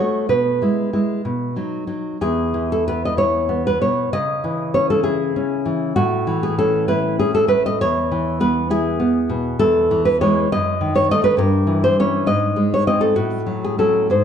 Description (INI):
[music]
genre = romantic piece for solo classical guitar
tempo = 60-69 BPM (dotted quarters)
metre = 6/8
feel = rubato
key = E major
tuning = A4 = 437 Hz
[part]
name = nylon-string guitar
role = solo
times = 0.0-14.2 s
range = E2 to D#5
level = -16 LUFS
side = equal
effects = none
[sound]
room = moderate recital hall reverb, RT60 1.5 s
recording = dark, warm production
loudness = -16 LUFS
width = side -8 dB against mid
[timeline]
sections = 0.0-2.2 A section; 2.2-14.2 B section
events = none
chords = 0.3 E/B; 1.2 B; 2.2 E5; 4.1 C#m; 6.0 A; 7.8 E; 9.6 Eadd11; 10.5 D#dim/F#; 11.4 Gdim7; 12.3 G#; 13.1 F#m/A